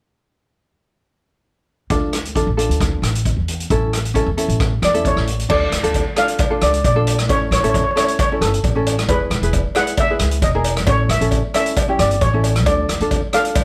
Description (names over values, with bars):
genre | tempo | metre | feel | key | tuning
calypso | 134 BPM | 4/4 | straight | D harmonic minor | A4 = 440 Hz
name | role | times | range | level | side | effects
ukulele | accompaniment | 1.9-13.5 s | C#4 to B4 | -24 LUFS | equal | none
upright bass | bass | 1.9-13.2 s | E1 to E2 | -22 LUFS | equal | none
street-band drum kit | drums | 1.9-13.6 s | crash cymbal, hi-hat, kick drum, rim click | -23 LUFS | equal | none
steel pan | melody | 4.8-13.6 s | A4 to F#5 | -22 LUFS | equal | none
cowbell | percussion | 5.5-13.6 s | none | -28 LUFS | equal | none
room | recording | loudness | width
light reverb | none | -18 LUFS | mono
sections
1.9-5.5 A section; 5.5-13.6 B section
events
none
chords
1.9 Dm; 3.7 A; 5.5 Dm; 7.3 A; 9.1 E; 10.9 A; 12.7 Dm